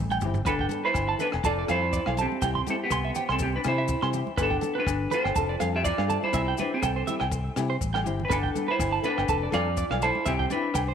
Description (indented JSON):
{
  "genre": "highlife guitar band",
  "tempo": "122 BPM",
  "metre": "4/4",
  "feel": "swing 55% on 16ths",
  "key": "G mixolydian",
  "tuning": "A4 = 440 Hz",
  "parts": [
    { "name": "fingered electric bass", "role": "bass", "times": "0.0-10.9 s", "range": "E1 to C3", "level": "-30 LUFS", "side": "left 1 dB", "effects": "none" },
    { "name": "electric guitar at the edge of break-up", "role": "arpeggios", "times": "0.1-10.9 s", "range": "B4 to C6", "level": "-30 LUFS", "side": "right 8 dB", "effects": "tape echo" },
    { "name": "agogo bells", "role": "percussion", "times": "0.1-10.9 s", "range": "none", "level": "-37 LUFS", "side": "left 11 dB", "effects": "none" },
    { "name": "congas", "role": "percussion", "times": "0.1-10.6 s", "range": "none", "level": "-38 LUFS", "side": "right 8 dB", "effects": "none" },
    { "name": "maracas", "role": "percussion", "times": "0.1-10.9 s", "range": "none", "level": "-41 LUFS", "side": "left 15 dB", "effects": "none" },
    { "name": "flamenco guitar", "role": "accompaniment", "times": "0.2-10.7 s", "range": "F3 to A4", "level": "-35 LUFS", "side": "left 9 dB", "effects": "none" },
    { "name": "compact cocktail drum kit", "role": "drums", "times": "0.2-10.9 s", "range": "hi-hat, kick drum, rim click, toms", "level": "-33 LUFS", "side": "left 1 dB", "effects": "none" },
    { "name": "semi-hollow electric guitar", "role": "melody", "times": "0.5-10.9 s", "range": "B3 to E5", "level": "-28 LUFS", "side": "right 1 dB", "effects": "tape echo" }
  ],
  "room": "light reverb, small room ambience",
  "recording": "1960s-style stereo with parts hard left and right",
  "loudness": "-24 LUFS",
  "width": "side -8 dB against mid",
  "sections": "0.5-10.9 A section",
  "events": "drum fill 0.0-0.5, 7.8-8.3",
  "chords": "0.5 Gadd9; 1.4 F6; 2.4 C; 4.4 Gadd9; 5.4 F6; 6.3 C; 8.3 Gadd9; 9.3 F6; 10.3 C"
}